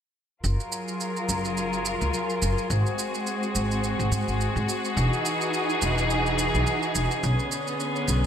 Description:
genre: sunset chillout.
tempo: 106 BPM.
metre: 4/4.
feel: swing 56% on 16ths.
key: Gb lydian.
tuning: A4 = 440 Hz.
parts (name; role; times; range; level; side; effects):
rich symphonic string section; sustained chords; 0.4-8.3 s; D3 to Bb4; -26 LUFS; equal; low-pass filter.
upright bass; bass; 0.4-8.3 s; E1 to Ab2; -26 LUFS; equal; none.
shaker; drums; 0.4-8.2 s; none; -34 LUFS; right 5 dB; overdrive.
drifting glass-harmonics texture; texture; 0.7-8.3 s; Ab4 to Ab5; -33 LUFS; equal; chorus, built-in reverb.
room: moderate lush hall reverb, RT60 2.0 s.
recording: bright 1980s-style digital production.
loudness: -23 LUFS.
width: side -8 dB against mid.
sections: 0.4-8.3 A section.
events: filter sweep on string section 0.4-8.3.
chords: 0.4 Gbmaj7; 2.7 Ab7; 5.0 Emaj9; 7.2 Cbmadd9.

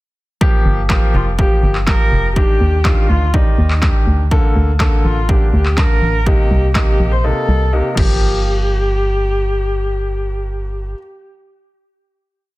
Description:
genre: dance-pop.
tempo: 123 BPM.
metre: 4/4.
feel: straight.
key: G minor.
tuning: A4 = 439 Hz.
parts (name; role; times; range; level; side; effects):
warm baby grand piano; accompaniment; 0.4-11.0 s; C3 to A5; -22 LUFS; left 2 dB; sidechain pumping.
punchy analog drum machine; drums; 0.4-8.1 s; crash cymbal, handclaps, kick drum, snare drum; -15 LUFS; equal; none.
organ-like FM bass; bass; 0.7-10.9 s; F1 to Eb2; -16 LUFS; equal; sidechain pumping.
dark viola; melody; 1.1-10.9 s; Eb4 to C5; -21 LUFS; left 1 dB; tape echo.
room: small room ambience.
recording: dense, heavily limited modern master.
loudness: -12 LUFS.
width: side -19 dB against mid.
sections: 0.4-8.2 verse; 8.2-12.1 final hit.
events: silent gap 7.2-8.2.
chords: 0.4 Gm7; 2.4 Ebmaj7; 4.3 Bbmaj7; 6.3 Cm7; 8.0 Gm7.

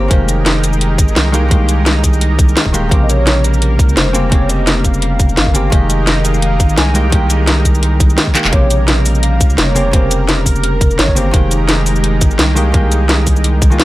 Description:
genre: liquid drum and bass.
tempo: 171 BPM.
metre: 4/4.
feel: swing 53% on 16ths.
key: Bb dorian.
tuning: A4 = 440 Hz.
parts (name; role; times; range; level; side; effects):
hollow clarinet-like synth lead; melody; 0.0-0.5, 3.0-11.7 s; Bb4 to Ab5; -22 LUFS; equal; analog chorus, digital delay.
hollow-body jazz guitar; accompaniment; 0.0-13.8 s; C3 to G4; -18 LUFS; equal; none.
lush unison pad; sustained chords; 0.0-13.8 s; G3 to Bb4; -22 LUFS; right 1 dB; chorus, sidechain pumping.
saturated sub bass; bass; 0.0-13.8 s; Eb1 to Db2; -14 LUFS; equal; none.
drum and bass drum kit; drums; 0.1-13.8 s; cabasa, handclaps, hi-hat, snare drum; -16 LUFS; equal; none.
electronic kick drum; drums; 0.1-13.7 s; none; -12 LUFS; equal; none.
room: little or no reverb.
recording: none.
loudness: -10 LUFS.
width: side -17 dB against mid.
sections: 0.0-13.8 A section.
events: drum fill 8.4.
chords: 0.1 Fm11; 2.9 Bbm69; 5.7 Fm11; 8.5 Bbm69; 11.3 Fm11.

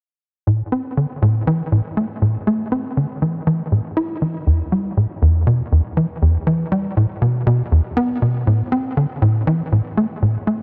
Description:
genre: ambient.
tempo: 120 BPM.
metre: 4/4.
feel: straight.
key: E minor.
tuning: A4 = 440 Hz.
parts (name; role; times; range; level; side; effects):
tight sequencer bass; solo; 0.5-10.6 s; E2 to E4; -19 LUFS; equal; analog chorus, tape echo.
room: light reverb.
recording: none.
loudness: -19 LUFS.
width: mono.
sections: 0.5-8.5 A section; 8.5-10.6 B section.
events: none.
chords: none.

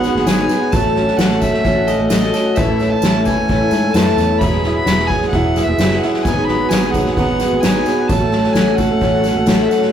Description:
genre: indie folk with a building arrangement.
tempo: 130 BPM.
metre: 4/4.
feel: straight.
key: unclear.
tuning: A4 = 440 Hz.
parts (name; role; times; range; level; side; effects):
warm fiddle; melody; 0.0-9.9 s; D#5 to B5; -21 LUFS; right 1 dB; none.
picked twelve-string acoustic guitar; accompaniment; 0.0-9.9 s; G#2 to A4; -20 LUFS; left 5 dB; none.
clear upright piano; arpeggios; 0.0-9.9 s; E3 to F#4; -18 LUFS; right 2 dB; none.
fingered electric bass; bass; 0.0-9.7 s; E1 to G#2; -22 LUFS; equal; none.
soft-mallet drum kit; drums; 0.0-9.9 s; kick drum, snare drum; -19 LUFS; equal; none.
tambourine; percussion; 0.0-9.8 s; none; -36 LUFS; right 5 dB; none.
room: wet studio reverb, RT60 0.6 s.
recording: rough rehearsal-room recording, warm saturation.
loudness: -13 LUFS.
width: side -9 dB against mid.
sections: 0.0-9.9 A section.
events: none.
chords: 0.0 G#m7; 0.7 F#m/A; 2.6 A; 4.4 Eadd9; 6.2 G#m7; 8.1 F#m/A.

